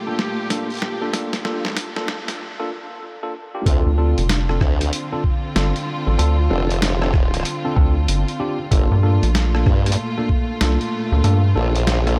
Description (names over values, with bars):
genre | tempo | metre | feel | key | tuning
glitch hop | 95 BPM | 4/4 | swing 63% on 16ths | G minor | A4 = 439 Hz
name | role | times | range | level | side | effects
dark studio string section | sustained chords | 0.0-12.2 s | Bb2 to G4 | -30 LUFS | equal | sidechain pumping
tine electric piano | stabs | 0.1-12.2 s | Bb3 to A4 | -28 LUFS | equal | vintage 12-bit sampler grit, sidechain pumping, analog delay
boom bap sampler-style drum kit | drums | 0.2-12.2 s | hi-hat, rim click, snare drum | -28 LUFS | equal | none
electronic kick drum | drums | 0.5-10.5 s | none | -20 LUFS | equal | high-pass filter on kick, high-pass filter on room
formant-sweep wobble bass | bass | 3.7-12.2 s | F1 to G2 | -22 LUFS | equal | chorus, overdrive
rubbery square bass | bass | 3.9-11.5 s | F1 to G2 | -19 LUFS | equal | tube saturation
room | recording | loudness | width
light reverb, digital ambience | high-pass filter | -20 LUFS | mono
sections
0.0-3.7 A section; 3.7-12.2 B section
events
build-up 0.0-3.7; drum fill 0.0-2.4; filter sweep on tine electric piano 0.0-3.7; filter sweep 0.0-3.7; break 2.4-3.7; drop 3.7-12.2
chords
0.0 Gm9; 3.7 Dm7; 8.7 Gm9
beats
0.50 | 1.14 1.77 2.40 3.03 | 3.66 4.29 4.93 5.56 | 6.19 6.82 7.45 8.08 | 8.71 9.35 9.98 10.61 | 11.24 11.87